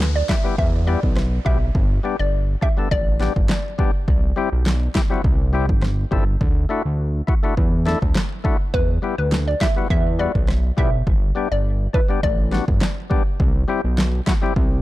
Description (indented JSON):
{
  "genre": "dancehall",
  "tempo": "103 BPM",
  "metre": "4/4",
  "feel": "straight",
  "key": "E minor",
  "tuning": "A4 = 440 Hz",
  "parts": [
    { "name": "fat analog bass", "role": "bass", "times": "0.0-14.8 s", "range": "G1 to E2", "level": "-20 LUFS", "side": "equal", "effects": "none" },
    { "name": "deep house drum kit", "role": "drums", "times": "0.0-14.7 s", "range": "handclaps, kick drum, rim click, snare drum", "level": "-20 LUFS", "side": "equal", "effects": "overdrive" },
    { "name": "downlifter", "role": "sound effects", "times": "0.0-4.1 s", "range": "none", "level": "-40 LUFS", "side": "left 2 dB", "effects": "none" },
    { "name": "hollow square pluck", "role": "melody", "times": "0.2-3.3, 8.7-12.7 s", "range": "B4 to E5", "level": "-27 LUFS", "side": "equal", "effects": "chorus, tape echo" },
    { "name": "percussive tonewheel organ", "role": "accompaniment", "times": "0.3-14.5 s", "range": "G3 to A4", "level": "-26 LUFS", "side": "left 5 dB", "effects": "overdrive" }
  ],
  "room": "little or no reverb",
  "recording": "dark, warm production",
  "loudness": "-17 LUFS",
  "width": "side -16 dB against mid",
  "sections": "0.0-14.8 A section",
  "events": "break 0.0-8.7",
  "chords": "0.0 Em; 1.7 G; 4.1 C; 6.4 Dadd9; 8.7 Em; 11.1 G; 13.4 C",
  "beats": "0.00 0.58 1.17 | 1.75 2.33 2.91 3.50 | 4.08 4.66 5.24 5.83 | 6.41 6.99 7.57 8.16 | 8.74 9.32 9.90 10.49 | 11.07 11.65 12.23 12.82 | 13.40 13.98 14.56"
}